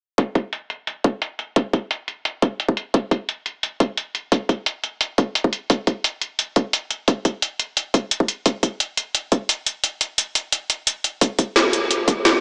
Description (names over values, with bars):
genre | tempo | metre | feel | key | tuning
liquid drum and bass | 174 BPM | 4/4 | straight | none | none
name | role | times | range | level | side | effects
drum and bass drum kit | drums | 0.2-12.3 s | hi-hat, snare drum | -22 LUFS | equal | low-pass filter on hats, low-pass filter on snare, low-pass filter on room
electronic kick drum | drums | 0.2-12.1 s | none | -21 LUFS | equal | high-pass filter on kick, high-pass filter on room
room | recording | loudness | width
moderate cathedral reverb, RT60 5.2 s | dreamy mix soaked in reverb, small speaker sound | -22 LUFS | mono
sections
0.2-12.4 A section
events
kick drops out 9.8-11.2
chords
none